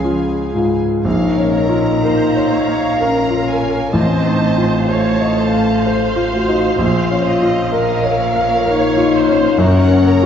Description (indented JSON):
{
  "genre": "classical, romantic movement for piano and orchestra",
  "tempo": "63 BPM",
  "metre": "3/4",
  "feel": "rubato",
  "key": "Bb minor",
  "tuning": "A4 = 440 Hz",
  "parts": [
    { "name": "clear grand piano", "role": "melody", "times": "0.0-10.3 s", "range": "A1 to F5", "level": "-17 LUFS", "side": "equal", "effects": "none" },
    { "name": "rich chamber violin section", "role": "melody", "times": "0.0-10.3 s", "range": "Eb5 to Bb5", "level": "-26 LUFS", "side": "equal", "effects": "none" },
    { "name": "warm chamber violin section", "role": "second line", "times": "0.0-10.3 s", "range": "Db5 to F5", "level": "-24 LUFS", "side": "left 1 dB", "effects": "none" },
    { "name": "rich studio viola section", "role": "accompaniment", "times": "0.0-10.3 s", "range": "Ab4 to Db5", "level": "-24 LUFS", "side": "right 2 dB", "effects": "none" },
    { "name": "dark French horn section", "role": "sustained chords", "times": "0.0-10.3 s", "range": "A3 to Gb4", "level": "-18 LUFS", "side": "left 4 dB", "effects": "none" },
    { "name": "clear studio cello section", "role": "bass", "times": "0.0-10.3 s", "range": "Gb2 to F3", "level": "-24 LUFS", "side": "right 5 dB", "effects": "none" },
    { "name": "rich studio double bass section", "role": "bass", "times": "0.0-10.3 s", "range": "Gb1 to Db2", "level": "-25 LUFS", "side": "right 3 dB", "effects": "none" }
  ],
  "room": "wet scoring stage reverb, RT60 1.9 s",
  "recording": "heard from further back in the room, nothing above 7.8 kHz",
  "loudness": "-13 LUFS",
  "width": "side -8 dB against mid",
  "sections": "0.0-1.0 A section; 1.0-10.3 B section",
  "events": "none",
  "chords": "0.0 Db; 1.0 Bbm; 4.0 F7/A; 6.8 Bbm; 9.6 Gb"
}